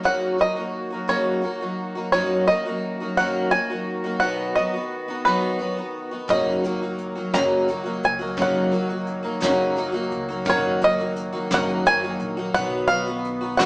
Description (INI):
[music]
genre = acoustic folk duo or small band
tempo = 58 BPM (dotted quarters)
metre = 6/8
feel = straight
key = F# major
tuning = A4 = 441 Hz
[part]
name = bluegrass banjo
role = melody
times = 0.0-13.7 s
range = F#4 to A#5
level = -21 LUFS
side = right 1 dB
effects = none
[part]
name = picked twelve-string acoustic guitar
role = accompaniment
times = 0.0-13.7 s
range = F#2 to F#4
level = -24 LUFS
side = equal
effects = none
[part]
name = warm brass ensemble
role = sustained chords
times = 0.0-13.7 s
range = F#2 to F#4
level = -32 LUFS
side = equal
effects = none
[part]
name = upright bass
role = bass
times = 6.3-13.7 s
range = F#1 to C#2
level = -38 LUFS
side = equal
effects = none
[part]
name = soft brush drum kit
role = drums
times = 6.3-13.7 s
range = hi-hat, kick drum, snare drum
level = -29 LUFS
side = equal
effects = none
[sound]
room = wet stone room reverb, RT60 1.0 s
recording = band playing live in one room, small speaker sound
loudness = -20 LUFS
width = side -25 dB against mid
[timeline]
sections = 0.0-13.7 A section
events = none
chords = 0.0 F#6; 2.1 D#m/F#; 4.2 B; 6.3 F#6; 10.5 D#m/F#; 12.5 B